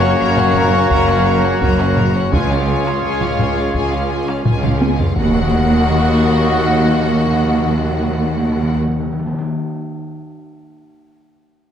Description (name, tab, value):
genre	cinematic, epic orchestral film score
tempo	84 BPM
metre	4/4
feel	straight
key	Eb minor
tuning	A4 = 441 Hz
part	warm symphonic violin section	melody	0.0-8.8 s	F5 to Bb5	-25 LUFS	left 4 dB	none
part	warm symphonic violin section	second line	0.0-8.8 s	F4 to Db5	-26 LUFS	left 2 dB	none
part	rich symphonic viola section	accompaniment	0.0-8.8 s	Bb3 to F4	-26 LUFS	right 3 dB	none
part	clear woodwind section	sustained chords	0.0-8.8 s	Bb3 to Eb5	-25 LUFS	left 1 dB	none
part	dark French horn section	sustained chords	0.0-8.8 s	Ab3 to Eb4	-23 LUFS	left 5 dB	none
part	dark trumpet section	stabs	0.0-8.8 s	F4 to Gb4	-23 LUFS	equal	none
part	clear studio cello section	bass	0.0-8.8 s	Db2 to Gb2	-21 LUFS	right 2 dB	none
part	rich symphonic double bass section	bass	0.0-8.8 s	Gb1 to Eb2	-20 LUFS	right 2 dB	none
part	taiko ensemble	drums	0.4-5.3 s	none	-20 LUFS	equal	none
part	timpani	percussion	5.1-9.4 s	Eb3	-21 LUFS	left 2 dB	none
part	impact	sound effects	5.2-9.5 s	none	-25 LUFS	equal	none
room	wet scoring stage reverb, RT60 1.9 s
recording	none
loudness	-13 LUFS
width	side -8 dB against mid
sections	0.0-5.2 A section; 5.2-8.0 B section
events	drum fill 4.5-5.2; impact 5.2-8.0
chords	0.0 Gb; 2.3 Db; 5.2 Ebm